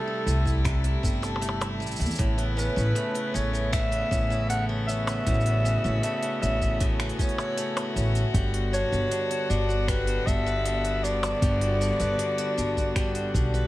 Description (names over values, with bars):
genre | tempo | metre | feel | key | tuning
folktronica | 78 BPM | 4/4 | straight | unclear | A4 = 440 Hz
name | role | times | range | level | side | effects
growling clarinet | melody | 0.0-13.7 s | A4 to F#5 | -30 LUFS | left 1 dB | ping-pong delay
rich string quartet | sustained chords | 0.0-13.7 s | C3 to F#4 | -32 LUFS | left 1 dB | none
picked swing-style acoustic guitar | arpeggios | 0.0-13.7 s | A2 to B4 | -34 LUFS | equal | vintage 12-bit sampler grit, ping-pong delay
upright bass | bass | 0.3-13.6 s | G1 to E2 | -27 LUFS | equal | none
minimal click drum kit | drums | 0.3-13.7 s | finger snaps, hi-hat, percussion blips, shaker | -35 LUFS | right 1 dB | none
electronic kick drum | drums | 0.5-13.5 s | none | -28 LUFS | equal | overdrive
room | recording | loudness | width
light reverb, studio reverb | vinyl crackle | -23 LUFS | side -16 dB against mid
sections
0.0-13.7 A section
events
none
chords
0.0 C6; 2.2 Aadd9; 8.3 Gmaj7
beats
0.65 1.42 | 2.19 2.96 3.73 4.50 | 5.27 6.04 6.81 7.58 | 8.35 9.11 9.88 10.65 | 11.42 12.19 12.96